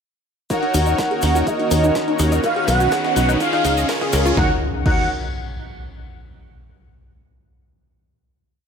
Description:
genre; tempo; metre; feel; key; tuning
progressive house; 124 BPM; 4/4; straight; Eb minor; A4 = 440 Hz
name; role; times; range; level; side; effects
expressive portamento lead; melody; 0.5-5.1 s; Eb5 to Gb5; -23 LUFS; right 1 dB; ensemble chorus, sidechain pumping, ping-pong delay
airy dreamy lead; second line; 0.5-5.1 s; Eb5 to Gb5; -30 LUFS; right 1 dB; none
lush unison pad; sustained chords; 0.9-4.6 s; Db3 to Ab4; -27 LUFS; right 1 dB; chorus, sidechain pumping
wide unison pluck; arpeggios; 0.5-5.1 s; Eb4 to Eb5; -25 LUFS; right 1 dB; sidechain pumping, ping-pong delay
soft supersaw; stabs; 0.5-5.0 s; Db4 to Db5; -24 LUFS; left 2 dB; sidechain pumping, ping-pong delay
breakbeat sampler-style drum kit; drums; 0.5-4.4 s; hi-hat, snare drum; -32 LUFS; equal; sidechain pumping on hats, high-pass filter on hats, high-pass filter on snare
deep house drum kit; drums; 0.5-5.0 s; crash cymbal, hi-hat, snare drum; -32 LUFS; left 2 dB; overdrive, sidechain pumping on hats, sidechain pumping on cymbals
electronic kick drum; drums; 0.5-5.0 s; none; -24 LUFS; equal; overdrive, high-pass filter on kick, high-pass filter on room
egg shaker; percussion; 0.5-4.4 s; none; -33 LUFS; left 2 dB; none
riser and impact; sound effects; 1.9-6.3 s; none; -29 LUFS; equal; none
tight sequencer bass; bass; 0.7-5.1 s; B1 to Eb2; -19 LUFS; equal; sidechain pumping
room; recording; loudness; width
light reverb; none; -16 LUFS; side -6 dB against mid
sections
0.5-4.4 build; 4.4-6.3 final chord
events
build-up 0.5-4.4; filter sweep on synth pluck 0.5-4.4; filter sweep on analog synth lead 0.5-4.4; riser 1.9-4.4; drum fill 2.4-4.4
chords
0.5 Ebm7; 2.4 Badd9; 3.4 Db; 4.4 Ebm7

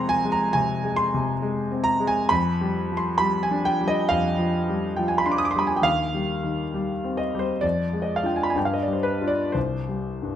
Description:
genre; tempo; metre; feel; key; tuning
classical, romantic nocturne for solo piano; 68 BPM; 4/4; rubato; unclear; A4 = 438 Hz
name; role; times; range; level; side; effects
clear concert grand piano; solo; 0.0-10.4 s; C2 to Eb6; -21 LUFS; equal; none
room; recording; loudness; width
moderate recital hall reverb, RT60 1.6 s; close, detailed microphones; -21 LUFS; side -10 dB against mid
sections
0.0-10.4 A section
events
none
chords
0.0 Fm; 2.3 G5/F; 5.9 Cm/Eb; 7.6 Ddim/F; 8.6 G5; 9.6 C5

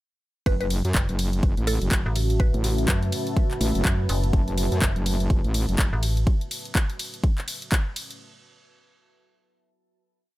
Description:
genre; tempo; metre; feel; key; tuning
bass house; 124 BPM; 4/4; swing 59% on 16ths; F# minor; A4 = 439 Hz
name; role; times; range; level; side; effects
mallet-like synth pluck; melody; 0.5-2.8 s; A4 to B4; -33 LUFS; right 2 dB; wide subtle chorus, tape echo
dark analog pad; sustained chords; 1.8-8.2 s; A3 to C#5; -35 LUFS; equal; chorus, sidechain pumping
metallic wobble bass; bass; 0.5-5.9 s; F#1 to F#2; -24 LUFS; equal; chorus, tube saturation, sidechain pumping
electronic kick drum; drums; 0.5-7.8 s; none; -22 LUFS; equal; none
house drum kit; drums; 0.5-8.2 s; handclaps, hi-hat, ride cymbal; -30 LUFS; equal; none
deep dark ambient pad; texture; 1.8-6.3 s; F#4 to A5; -34 LUFS; right 1 dB; chorus, built-in reverb, sidechain pumping
metallic FM bass; bass; 0.9-6.3 s; F#1 to F#2; -24 LUFS; equal; overdrive, sidechain pumping
room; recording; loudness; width
little or no reverb; none; -21 LUFS; side -17 dB against mid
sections
0.5-8.2 drop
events
drop 0.5-8.2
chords
0.5 F#m

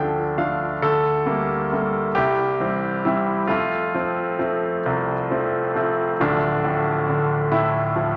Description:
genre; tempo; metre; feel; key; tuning
classical, lyrical solo piano; 45 BPM (dotted quarters); 6/8; rubato; F major; A4 = 440 Hz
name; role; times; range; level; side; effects
bright grand piano; solo; 0.0-8.2 s; D1 to G5; -22 LUFS; equal; none
room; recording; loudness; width
wet scoring stage reverb, RT60 1.8 s; none; -22 LUFS; mono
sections
0.0-6.2 A section; 6.2-8.2 B section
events
grand piano fill 0.0-0.8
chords
0.0 Dm; 0.8 Gmadd9/D; 2.2 C; 3.5 F; 6.2 Dmadd9

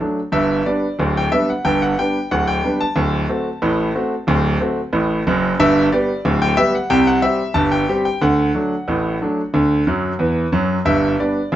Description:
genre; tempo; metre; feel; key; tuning
ragtime piano; 91 BPM; 2/4; straight; G major; A4 = 440 Hz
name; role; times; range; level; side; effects
clear concert grand piano; solo; 0.0-11.6 s; D1 to A5; -16 LUFS; equal; none
room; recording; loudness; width
moderate stone room reverb, RT60 1.1 s; band playing live in one room, nothing above 7.9 kHz; -15 LUFS; side -12 dB against mid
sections
0.3-11.6 A section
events
grand piano fill 9.9-10.9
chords
0.3 G; 3.0 D7; 5.6 G; 6.9 C5; 8.2 D; 10.9 G

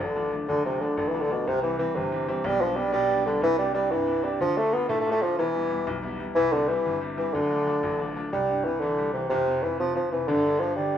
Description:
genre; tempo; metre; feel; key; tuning
celtic folk, Celtic jig; 122 BPM (dotted quarters); 6/8; straight; unclear; A4 = 440 Hz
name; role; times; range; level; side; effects
warm bassoon; melody; 0.0-11.0 s; B2 to B3; -24 LUFS; equal; none
bright baby grand piano; accompaniment; 0.0-11.0 s; D1 to F4; -31 LUFS; left 2 dB; none
room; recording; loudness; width
wet studio reverb, RT60 0.5 s; band playing live in one room; -23 LUFS; side -9 dB against mid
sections
0.5-8.3 A section; 8.3-11.0 B section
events
none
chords
0.5 Dm; 1.5 C; 2.4 G/B; 3.4 Cadd9; 4.4 Dm; 5.4 Em; 6.4 C; 7.3 Dm; 8.3 C; 9.3 F5; 10.3 G5

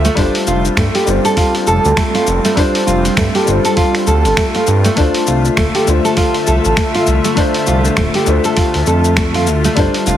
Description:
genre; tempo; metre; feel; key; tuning
organic downtempo; 100 BPM; 4/4; swing 59% on 16ths; D minor; A4 = 440 Hz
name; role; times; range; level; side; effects
felt-muted upright piano; accompaniment; 0.0-10.2 s; G3 to C5; -20 LUFS; left 4 dB; sidechain pumping, digital delay
airy breathy pad; sustained chords; 0.0-10.2 s; D3 to E5; -20 LUFS; equal; chorus, sidechain pumping
smooth synth bass; bass; 0.0-10.2 s; D1 to G2; -15 LUFS; equal; sidechain pumping
dusty soul sampler-style drum kit; drums; 0.0-10.2 s; finger snaps, hi-hat, shaker; -20 LUFS; left 1 dB; none
nylon-string guitar; arpeggios; 0.1-10.2 s; A3 to A4; -16 LUFS; right 1 dB; vintage 12-bit sampler grit, digital delay
electronic kick drum; drums; 0.2-9.9 s; none; -17 LUFS; equal; none
room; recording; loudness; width
moderate lush hall reverb, RT60 2.4 s; heavily compressed radio sound; -11 LUFS; side -11 dB against mid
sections
0.0-10.2 A section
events
none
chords
0.2 G7sus4; 5.0 Dm7

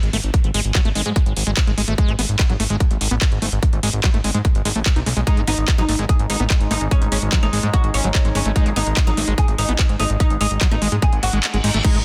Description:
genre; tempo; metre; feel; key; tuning
psychedelic trance; 146 BPM; 4/4; straight; unclear; A4 = 440 Hz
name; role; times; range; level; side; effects
fat analog bass; bass; 0.0-12.0 s; G#1 to G#2; -24 LUFS; equal; none
drum and bass drum kit; drums; 0.0-12.0 s; crash cymbal, handclaps, hi-hat; -26 LUFS; equal; none
screaming distorted acid line; riff; 0.1-12.0 s; F#3 to D#4; -28 LUFS; equal; distortion, chorus, sidechain pumping, tape echo
electronic kick drum; drums; 0.3-11.9 s; none; -19 LUFS; equal; none
oud; melody; 5.3-12.0 s; C#4 to G#4; -27 LUFS; equal; phaser, sidechain pumping, tape echo
overtone-sweeping drone; sustained chords; 6.3-11.9 s; G#3 to D#4; -33 LUFS; equal; chorus, built-in reverb, sidechain pumping
reverse cymbal; sound effects; 11.2-11.8 s; none; -30 LUFS; equal; none
room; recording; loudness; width
digital ambience; dense, heavily limited modern master; -18 LUFS; mono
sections
0.0-11.8 A section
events
reverse cymbal 11.2-11.8; kick drops out 11.4-11.8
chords
0.0 G#5

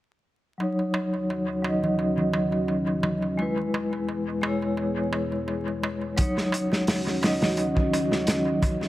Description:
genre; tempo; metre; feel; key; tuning
trip hop; 86 BPM; 4/4; swing 54% on 16ths; Eb phrygian; A4 = 440 Hz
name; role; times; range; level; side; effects
vibraphone with medium mallets; accompaniment; 0.6-8.9 s; Gb3 to Eb5; -26 LUFS; equal; tremolo, low-pass filter, dub echo
dark analog pad; sustained chords; 1.3-8.9 s; Eb3 to G#4; -31 LUFS; equal; chorus
darbuka; percussion; 0.6-8.9 s; none; -33 LUFS; right 2 dB; dub echo
crunchy breakbeat drum kit; drums; 6.2-8.9 s; hi-hat, kick drum, snare drum; -25 LUFS; equal; dub echo
room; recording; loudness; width
light reverb, studio reverb; echo-heavy mix, vinyl crackle; -23 LUFS; side -15 dB against mid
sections
0.6-8.9 A section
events
filter sweep on vibraphone 0.6-8.9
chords
0.6 Ebm7; 3.4 E; 6.2 Ebm7

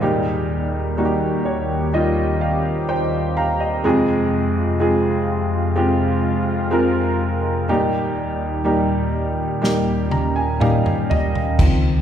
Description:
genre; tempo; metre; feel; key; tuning
pop ballad; 62 BPM; 4/4; straight; unclear; A4 = 440 Hz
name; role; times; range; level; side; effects
clear upright piano; accompaniment; 0.0-12.0 s; Eb2 to Bb5; -19 LUFS; equal; none
sweeping resonant pad; sustained chords; 0.0-12.0 s; Eb2 to G4; -22 LUFS; left 1 dB; chorus
natural country drum kit; drums; 9.6-11.8 s; crash cymbal, kick drum, snare drum, toms; -19 LUFS; equal; none
vintage muted fingered electric bass; bass; 11.6-12.0 s; Db2; -19 LUFS; left 1 dB; none
room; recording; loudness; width
wet concert hall reverb, RT60 2.1 s; recorded in a church or concert hall; -17 LUFS; side -9 dB against mid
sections
0.0-11.6 A section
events
upright piano fill 1.0-3.8, 9.6-11.6; drum fill 9.6-11.6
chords
0.0 Eb; 3.8 Fm; 7.7 Eb

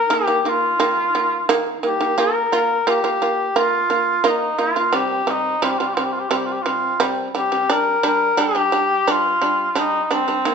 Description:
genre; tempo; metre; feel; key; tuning
mongolian traditional, Mongolian folk; 87 BPM; 4/4; straight; unclear; A4 = 440 Hz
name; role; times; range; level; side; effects
mellow cor anglais; melody; 0.0-10.5 s; C4 to Bb4; -19 LUFS; left 1 dB; none
shamisen; arpeggios; 0.0-10.5 s; C3 to F4; -21 LUFS; right 3 dB; none
room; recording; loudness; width
moderate large studio reverb, RT60 1.2 s; band playing live in one room, nothing above 7.9 kHz; -17 LUFS; side -6 dB against mid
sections
0.0-10.5 A section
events
none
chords
0.0 Eb5; 2.2 Bb5; 4.9 C5; 7.7 G5

